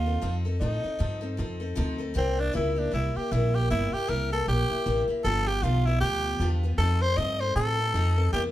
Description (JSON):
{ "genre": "rockabilly", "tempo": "156 BPM", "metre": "4/4", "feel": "swing 59% on 8ths", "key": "unclear", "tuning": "A4 = 444 Hz", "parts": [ { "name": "growling tenor saxophone", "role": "melody", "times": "0.0-8.4 s", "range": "C4 to Eb5", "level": "-28 LUFS", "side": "equal", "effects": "none" }, { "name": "picked steel-string acoustic guitar", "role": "accompaniment", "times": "0.0-8.5 s", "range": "G2 to A4", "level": "-31 LUFS", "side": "left 3 dB", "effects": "none" }, { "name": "upright bass", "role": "bass", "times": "0.0-8.5 s", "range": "G1 to A2", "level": "-26 LUFS", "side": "equal", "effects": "none" } ], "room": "moderate studio ambience, RT60 0.5 s", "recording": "band playing live in one room", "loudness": "-24 LUFS", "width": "side -14 dB against mid", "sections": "0.0-8.5 A section", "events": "none", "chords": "0.0 F7; 2.2 C7; 5.2 G7; 6.8 F7" }